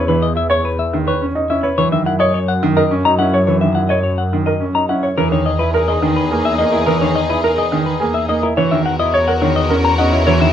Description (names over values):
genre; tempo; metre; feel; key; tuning
classical, minimalist pattern music; 106 BPM; 3/4; straight; E lydian; A4 = 440 Hz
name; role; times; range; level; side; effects
semi-hollow electric guitar; melody; 0.0-10.5 s; A#4 to A#5; -19 LUFS; left 6 dB; none
bright baby grand piano; arpeggios; 0.0-10.4 s; D#4 to C#5; -19 LUFS; right 3 dB; none
clear studio double bass section; bass; 0.0-10.5 s; E2 to F#2; -20 LUFS; equal; none
bright baby grand piano; accompaniment; 0.1-10.5 s; D#3 to C#4; -18 LUFS; right 2 dB; none
clear studio violin section; sustained chords; 5.2-10.5 s; D#4 to A#4; -23 LUFS; left 3 dB; none
room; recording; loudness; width
light reverb; close, detailed microphones; -13 LUFS; side -10 dB against mid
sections
0.0-5.2 A section; 5.2-10.5 B section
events
none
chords
0.0 E5; 1.8 F#7(no3); 5.2 Emaj7#11; 8.6 F#7/E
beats
| 0.08 0.64 1.21 | 1.78 2.34 2.91 | 3.47 4.04 4.61 | 5.17 5.74 6.30 | 6.87 7.44 8.00 | 8.57 9.13 9.70 | 10.27